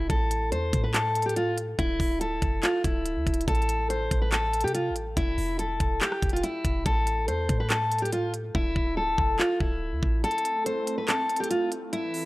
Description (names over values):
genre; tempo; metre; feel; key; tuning
hip hop, trap; 142 BPM; 4/4; half-time; A minor; A4 = 440 Hz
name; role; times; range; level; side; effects
picked steel-string acoustic guitar; melody; 0.0-12.3 s; E4 to C5; -27 LUFS; equal; low-pass filter, analog delay
clean 808-style bass; bass; 0.0-10.2 s; D1 to C3; -30 LUFS; equal; none
trap drum kit; drums; 0.1-12.2 s; handclaps, hi-hat, kick drum, rim click; -28 LUFS; equal; none
airy breathy pad; sustained chords; 10.2-12.3 s; E3 to B4; -36 LUFS; right 1 dB; chorus
room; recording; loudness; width
little or no reverb; dry, gritty hardware recording; -24 LUFS; side -19 dB against mid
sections
0.0-12.3 A section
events
hi-hats muted 8.5-10.2; kick muted 10.2-12.3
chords
0.1 A5; 1.8 Dmadd9; 3.5 Am; 5.2 Esus4; 6.9 A5; 8.5 Dmadd9; 10.2 Am